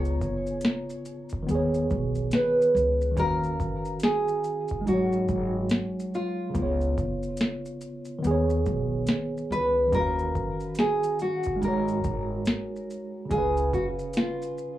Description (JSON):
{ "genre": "lo-fi hip hop", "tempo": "71 BPM", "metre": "4/4", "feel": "swing 61% on 16ths", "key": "unclear", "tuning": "A4 = 440 Hz", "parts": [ { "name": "nylon-string guitar", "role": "melody", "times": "0.0-14.8 s", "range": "F4 to Db5", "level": "-27 LUFS", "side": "right 1 dB", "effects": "tape echo, plate reverb" }, { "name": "tine electric piano", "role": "accompaniment", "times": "0.0-14.8 s", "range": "Db3 to F5", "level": "-29 LUFS", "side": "right 1 dB", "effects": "overdrive, fast stereo tremolo, cassette tape, plate reverb" }, { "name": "upright bass", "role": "bass", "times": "0.0-13.7 s", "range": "Ab1 to D#2", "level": "-30 LUFS", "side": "equal", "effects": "none" }, { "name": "booming analog drum machine", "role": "drums", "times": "0.0-14.8 s", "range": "hi-hat, kick drum, shaker, snare drum", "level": "-30 LUFS", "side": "equal", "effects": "overdrive" } ], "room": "moderate booth ambience, RT60 0.2 s", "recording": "worn, warbling old tape, cassette tape, warbly pitch drift, small room ambience", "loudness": "-24 LUFS", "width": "side -14 dB against mid", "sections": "0.0-14.8 A section", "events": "none", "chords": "0.0 Db7; 1.5 B6; 3.2 Ebm9; 4.9 Ab7sus4; 6.5 Db7; 8.2 B6; 9.9 Ebm9; 11.6 Ab7sus4; 13.3 Db7" }